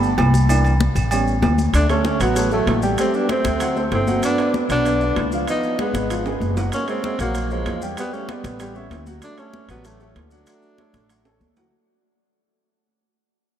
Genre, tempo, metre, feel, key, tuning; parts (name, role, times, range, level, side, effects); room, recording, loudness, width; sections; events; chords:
Afro-Cuban jazz; 192 BPM; 4/4; straight; D major; A4 = 440 Hz
warm baby grand piano; accompaniment; 0.0-11.7 s; E3 to B5; -25 LUFS; equal
upright bass; bass; 0.0-11.7 s; F#1 to E2; -21 LUFS; equal
congas; percussion; 0.0-11.7 s; -27 LUFS; left 3 dB
maracas; percussion; 0.0-11.7 s; -37 LUFS; left 4 dB
timbales and agogo bells; percussion; 0.2-11.6 s; -28 LUFS; right 5 dB
breathy trombone; second line; 1.7-11.4 s; E#3 to B3; -27 LUFS; right 4 dB
breathy tenor saxophone; melody; 1.8-11.4 s; G#3 to D#4; -24 LUFS; equal
wet cathedral reverb, RT60 6.0 s; in a vast, echoing space; -17 LUFS; side -10 dB against mid
0.0-1.7 A section; 1.7-11.7 B section
grand piano solo 0.0-1.7; fade-out 1.7-11.7; drum fill 6.3-6.7, 11.3-11.7
0.5 C7; 1.1 A7; 1.7 Dmaj7; 3.0 Am7; 3.6 D7; 4.2 Bmadd9; 5.5 G#m6; 6.7 F#maj9; 8.0 A9; 9.2 Dmaj7